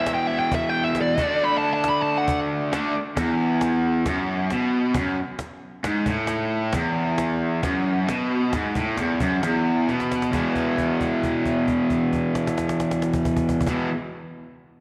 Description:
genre	garage rock duo or trio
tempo	134 BPM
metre	4/4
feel	straight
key	unclear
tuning	A4 = 440 Hz
part	fuzz lead guitar	melody	0.0-2.4 s	D5 to B5	-26 LUFS	equal	distortion
part	cranked stack guitar	riff	0.0-13.9 s	E2 to D4	-24 LUFS	equal	overdrive, spring reverb
part	cajon	drums	0.1-13.8 s	none	-33 LUFS	equal	none
room	moderate echo chamber reverb, RT60 1.9 s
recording	none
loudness	-23 LUFS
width	mono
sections	0.0-3.2 A section; 3.2-10.3 B section; 10.3-13.9 C section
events	drum fill 9.9-10.3; held note 10.3-13.7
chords	0.0 E5; 1.2 D5; 3.2 E5

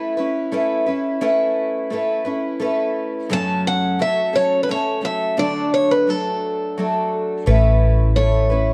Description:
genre	acoustic folk duo or small band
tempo	86 BPM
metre	3/4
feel	straight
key	A major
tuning	A4 = 439 Hz
part	picked twelve-string acoustic guitar	accompaniment	0.0-8.7 s	F#2 to B4	-23 LUFS	equal	none
part	picked acoustic archtop guitar	melody	3.3-8.7 s	A4 to A5	-22 LUFS	equal	none
part	woody fretless electric bass	bass	7.5-8.7 s	A1	-18 LUFS	equal	none
room	moderate large studio reverb, RT60 1.1 s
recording	dark, warm production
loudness	-19 LUFS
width	mono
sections	0.0-7.5 A section; 7.5-8.7 B section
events	steel-string acoustic guitar solo 7.5-8.7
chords	0.0 Aadd9; 3.3 F#m; 5.4 D; 7.5 Aadd9

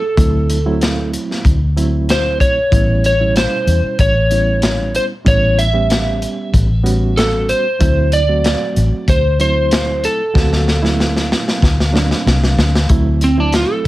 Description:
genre	straight-eighth soul blues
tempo	94 BPM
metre	4/4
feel	straight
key	D mixolydian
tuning	A4 = 441 Hz
part	electric slide guitar	melody	0.0-13.9 s	C4 to E5	-17 LUFS	equal	none
part	reed electric piano	accompaniment	0.2-13.9 s	B2 to G4	-21 LUFS	right 3 dB	fast tremolo
part	vintage muted fingered electric bass	bass	0.2-13.9 s	A1 to E2	-16 LUFS	equal	none
part	crunchy breakbeat drum kit	drums	0.2-13.9 s	hi-hat, kick drum, snare drum	-17 LUFS	equal	none
room	light reverb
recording	none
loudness	-12 LUFS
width	side -17 dB against mid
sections	0.0-12.9 A section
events	drum fill 10.4-12.9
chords	0.0 D9; 2.7 A9; 7.8 D9

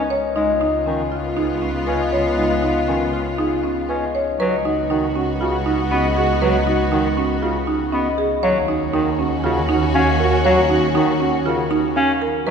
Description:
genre	classical, minimalist pattern music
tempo	119 BPM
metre	4/4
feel	straight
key	Db mixolydian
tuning	A4 = 440 Hz
part	concert harp	melody	0.0-12.5 s	Ab4 to Bb5	-26 LUFS	left 7 dB	none
part	clear French horn	second line	0.0-12.5 s	F4 to Gb4	-25 LUFS	right 1 dB	none
part	bright bass clarinet	accompaniment	0.0-12.5 s	Db3 to Db4	-25 LUFS	left 2 dB	none
part	clear studio string section	sustained chords	0.0-12.5 s	Cb4 to Gb4	-27 LUFS	left 2 dB	none
part	buzzing marimba with medium hard mallets	arpeggios	0.0-12.5 s	Db4 to Db5	-21 LUFS	right 3 dB	none
part	clear studio double bass section	bass	0.0-12.5 s	Db2 to Eb2	-24 LUFS	right 1 dB	none
room	wet cathedral reverb, RT60 5.2 s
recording	recorded in a church or concert hall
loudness	-16 LUFS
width	side -6 dB against mid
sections	0.0-4.4 A section; 4.4-12.5 B section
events	none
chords	0.4 Db7; 4.4 Db9sus4; 8.4 Ebm7

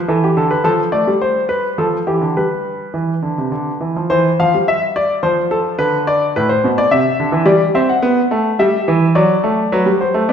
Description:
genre	classical, baroque-style two-part invention for grand piano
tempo	106 BPM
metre	3/4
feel	straight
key	C major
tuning	A4 = 441 Hz
part	clear concert grand piano	solo	0.0-10.3 s	A2 to F#5	-13 LUFS	equal	none
room	wet recital hall reverb, RT60 1.3 s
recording	recorded in a church or concert hall, nothing above 10.4 kHz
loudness	-13 LUFS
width	side -8 dB against mid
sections	0.0-4.1 A section; 4.1-10.3 B section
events	none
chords	0.1 A5/E; 0.7 F; 1.8 Dm/F; 2.4 G; 4.1 C/E; 5.2 F; 5.8 Asus24; 6.9 C; 7.5 G; 8.6 Em; 9.2 D7/F#

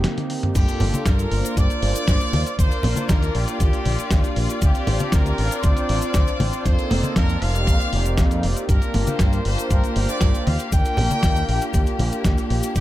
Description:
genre	nu-disco, nu disco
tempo	118 BPM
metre	4/4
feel	straight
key	unclear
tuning	A4 = 436 Hz
part	warm analog pad	accompaniment	0.0-12.8 s	Bb3 to C5	-27 LUFS	right 1 dB	chorus, cassette tape, analog delay
part	fingered electric bass with an envelope filter	bass	0.0-12.8 s	F1 to G2	-23 LUFS	equal	none
part	dusty soul sampler-style drum kit	drums	0.0-12.8 s	crash cymbal, hi-hat, snare drum, toms	-28 LUFS	equal	none
part	brilliant trumpet section	melody	0.6-12.8 s	G4 to G5	-28 LUFS	left 1 dB	analog delay
part	clear studio string section	sustained chords	0.6-12.8 s	Bb3 to D5	-32 LUFS	left 3 dB	sidechain pumping
part	electronic kick drum	drums	0.6-12.8 s	none	-19 LUFS	equal	none
part	cabasa and congas	percussion	0.6-12.8 s	none	-28 LUFS	left 1 dB	analog delay
room	light reverb, digital ambience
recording	echo-heavy mix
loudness	-18 LUFS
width	side -15 dB against mid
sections	0.0-12.8 A section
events	break 0.0-0.6; drum fill 0.0-0.6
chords	0.0 F9sus4 (rootless); 0.6 Gm7; 2.3 Ebmaj7; 4.6 Bb6; 6.7 F9sus4; 8.7 Gm7; 10.5 Ebmaj7

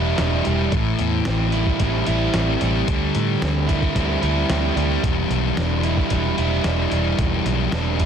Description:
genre	rock, shoegaze and dream pop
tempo	111 BPM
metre	4/4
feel	straight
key	E minor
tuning	A4 = 440 Hz
part	overdriven semi-hollow guitar	riff	0.0-8.1 s	E2 to E4	-24 LUFS	right 12 dB	reverse reverb
part	thick fuzz guitar	riff	0.0-8.1 s	E2 to E4	-23 LUFS	left 11 dB	distortion, lush chorus
part	vintage muted picked electric bass	bass	0.0-8.1 s	E1 to A2	-23 LUFS	equal	none
part	lo-fi sampler-style drum kit	drums	0.2-8.1 s	hi-hat, kick drum, snare drum	-26 LUFS	equal	none
room	digital ambience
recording	dense, heavily limited modern master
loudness	-18 LUFS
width	side -8 dB against mid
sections	0.0-8.1 A section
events	none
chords	0.0 Em7; 0.7 Am7; 2.9 D9sus4; 5.0 Em7

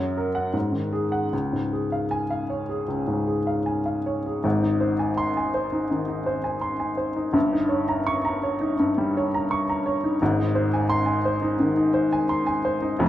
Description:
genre	classical, romantic character piece for solo piano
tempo	75-87 BPM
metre	4/4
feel	rubato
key	Db major, Ab major from 4.4 s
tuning	A4 = 440 Hz
part	clear upright piano	solo	0.0-13.1 s	F1 to Db6	-22 LUFS	equal	none
room	moderate recital hall reverb, RT60 1.6 s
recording	dark, warm production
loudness	-22 LUFS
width	side -13 dB against mid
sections	0.0-4.4 A section; 4.4-13.1 B section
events	none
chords	0.0 Gb; 0.5 Ab5; 1.3 Db; 4.4 Ab; 7.3 Eb7/G; 10.2 Ab

